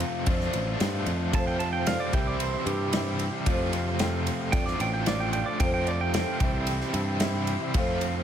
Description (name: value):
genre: folk rock and heartland rock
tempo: 112 BPM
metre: 4/4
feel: straight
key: F major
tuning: A4 = 440 Hz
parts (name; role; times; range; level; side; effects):
- picked twelve-string acoustic guitar; accompaniment; 0.0-8.2 s; F2 to G4; -35 LUFS; left 2 dB; tape echo
- cranked stack guitar; riff; 0.0-8.2 s; F2 to F4; -31 LUFS; equal; overdrive, tremolo, tape echo
- picked electric bass; bass; 0.0-8.2 s; A1 to G2; -30 LUFS; equal; none
- natural country drum kit; drums; 0.0-8.1 s; kick drum, ride cymbal, snare drum; -30 LUFS; equal; none
- pedal steel guitar; second line; 1.3-7.7 s; G4 to A5; -33 LUFS; right 6 dB; none
- dark baby grand piano; accompaniment; 1.3-8.2 s; G4 to G5; -38 LUFS; left 2 dB; tape echo
- tonewheel organ; sustained chords; 1.3-8.2 s; G4 to C6; -40 LUFS; right 1 dB; chorus vibrato, slow rotary speaker
room: light reverb, small room ambience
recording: echo-heavy mix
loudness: -24 LUFS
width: side -9 dB against mid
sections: 0.0-8.2 A section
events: pedal steel guitar solo 0.0-8.2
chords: 0.3 Dm7; 1.3 F; 2.1 C; 3.5 F; 4.5 Dm7; 5.6 F; 6.4 C